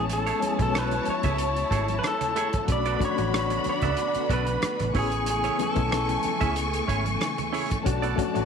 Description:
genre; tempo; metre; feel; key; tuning
lush 1970s-style soul; 93 BPM; 4/4; swing 54% on 16ths; A major; A4 = 440 Hz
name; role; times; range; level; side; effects
electric guitar through a small old amp; melody; 0.0-6.9 s; G#4 to D5; -28 LUFS; equal; none
warm studio string section; second line; 0.0-8.4 s; A3 to C#6; -30 LUFS; left 1 dB; tape echo
overdriven reed electric piano; accompaniment; 0.0-8.4 s; G#3 to G#5; -32 LUFS; left 14 dB; fast tremolo
vintage muted fingered electric bass; bass; 0.0-8.4 s; G#1 to C#2; -30 LUFS; right 1 dB; none
direct-recorded clean electric guitar; riff; 0.1-8.4 s; A3 to E5; -34 LUFS; right 12 dB; vibrato effect
warm soul drum kit; drums; 0.1-8.4 s; hi-hat, kick drum, rim click; -30 LUFS; right 1 dB; none
congas; percussion; 0.1-8.4 s; none; -37 LUFS; right 12 dB; none
string machine, full ensemble; sustained chords; 2.7-8.4 s; C#3 to B3; -37 LUFS; equal; ensemble chorus
room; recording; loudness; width
moderate spring reverb, RT60 2.1 s; 1960s-style stereo with parts hard left and right; -23 LUFS; side -6 dB against mid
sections
0.0-8.4 A section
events
none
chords
0.0 Amaj7; 2.7 Bm7; 5.0 Amaj7; 7.9 Bm7

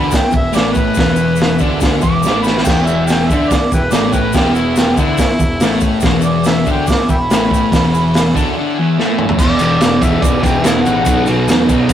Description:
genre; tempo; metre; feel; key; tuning
garage rock duo or trio; 142 BPM; 4/4; straight; E major; A4 = 440 Hz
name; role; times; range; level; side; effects
overdriven harmonica; melody; 0.0-11.2 s; E4 to D6; -19 LUFS; equal; none
overdriven combo organ; sustained chords; 0.0-9.4 s; E4 to G#5; -28 LUFS; equal; none
fuzz guitar; riff; 0.0-11.9 s; E2 to D4; -16 LUFS; left 1 dB; distortion
growling picked electric bass; bass; 0.0-11.9 s; E1 to E2; -23 LUFS; equal; overdrive
crunchy breakbeat drum kit; drums; 0.1-11.9 s; crash cymbal, hi-hat, kick drum, ride cymbal, snare drum, toms; -15 LUFS; equal; none
egg shaker; percussion; 0.1-11.9 s; none; -32 LUFS; left 5 dB; none
room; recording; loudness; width
moderate studio reverb, RT60 0.5 s; rough rehearsal-room recording, warm saturation; -11 LUFS; side -10 dB against mid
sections
0.0-9.4 A section; 9.4-11.9 B section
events
harmonica solo 0.0-9.4; drum fill 2.2-2.7, 9.0-9.4; break 8.6-9.4; transistor combo organ fill 8.6-9.4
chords
0.0 E; 9.4 E5; 11.1 B5

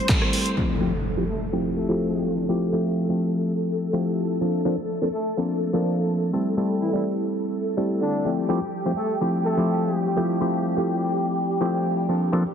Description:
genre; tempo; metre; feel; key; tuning
filtered disco house; 125 BPM; 4/4; straight; F major; A4 = 440 Hz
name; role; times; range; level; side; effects
barky reed electric piano; accompaniment; 0.0-12.4 s; F3 to A4; -23 LUFS; left 1 dB; overdrive, phaser, vintage 12-bit sampler grit, sidechain pumping, low-pass filter
string machine, full ensemble; sustained chords; 0.0-12.5 s; G4 to C5; -30 LUFS; equal; phaser, ensemble chorus, sidechain pumping, low-pass filter
punchy analog drum machine; drums; 0.1-0.5 s; handclaps, hi-hat, rim click; -26 LUFS; right 1 dB; sidechain pumping on hats
impact; sound effects; 0.6-2.5 s; none; -29 LUFS; equal; none
warm horn section; melody; 1.3-10.1 s; D3 to A4; -30 LUFS; right 1 dB; sidechain pumping, low-pass filter
room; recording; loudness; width
moderate plate reverb, RT60 1.6 s; heavily compressed radio sound; -21 LUFS; side -8 dB against mid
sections
0.6-12.5 A section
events
band accent 0.1; impact 0.6-2.5; filter sweep 0.6-12.5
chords
0.0 Am7; 0.6 Fmaj9; 4.4 Bbmaj9; 6.3 Am7; 8.3 Fmaj9

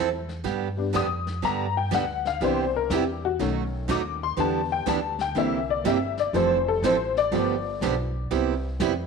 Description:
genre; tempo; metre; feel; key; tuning
country, western swing; 122 BPM; 4/4; swing 66% on 8ths; C major; A4 = 439 Hz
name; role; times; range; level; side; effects
honky-tonk upright piano; accompaniment; 0.0-8.6 s; D3 to Eb6; -26 LUFS; left 9 dB; none
picked steel-string acoustic guitar; accompaniment; 0.0-8.9 s; B2 to A4; -26 LUFS; right 11 dB; none
upright bass; bass; 0.0-9.1 s; F1 to G2; -31 LUFS; equal; none
vintage brush drum kit; drums; 0.3-9.1 s; brushed snare drum, hi-hat, snare drum; -37 LUFS; left 7 dB; none
room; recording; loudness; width
moderate echo chamber reverb, RT60 1.3 s, small room ambience; 1960s-style stereo with parts hard left and right; -23 LUFS; side -5 dB against mid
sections
0.0-9.1 A section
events
honky-tonk piano solo 0.0-9.1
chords
0.5 G; 2.4 Cmaj7; 3.4 B7; 4.4 Em7; 5.4 C7; 6.3 Fmaj7; 7.3 G7; 8.3 Cmaj7

